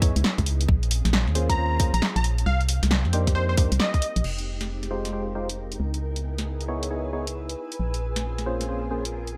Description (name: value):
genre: UK garage, two-step garage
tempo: 135 BPM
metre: 4/4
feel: swing 64% on 16ths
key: F minor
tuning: A4 = 439 Hz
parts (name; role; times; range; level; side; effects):
- soft string machine; sustained chords; 0.0-9.4 s; Ab3 to Ab4; -41 LUFS; equal; phaser, ensemble chorus, sidechain pumping
- percussive organ stab; stabs; 0.0-9.0 s; Ab3 to Db5; -33 LUFS; equal; analog chorus, tape echo
- organ-like FM bass; bass; 0.0-9.4 s; F1 to Gb2; -28 LUFS; equal; tube saturation
- electronic kick drum; drums; 0.0-4.0 s; none; -24 LUFS; equal; overdrive
- punchy analog drum machine; drums; 0.0-9.3 s; crash cymbal, hi-hat, snare drum; -30 LUFS; equal; none
- plucky unison lead; melody; 1.5-4.2 s; C5 to Bb5; -32 LUFS; equal; tape echo
- granular cloud pad; texture; 5.4-9.4 s; Bb4 to Fb6; -41 LUFS; equal; built-in reverb, sidechain pumping
room: light reverb, digital ambience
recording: none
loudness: -25 LUFS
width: mono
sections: 0.0-4.2 A section; 4.2-9.4 B section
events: none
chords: 0.0 Dbm9; 0.7 Bbm9; 2.5 Cm9; 4.2 Fm9; 5.8 Dbm9; 7.8 Bbm9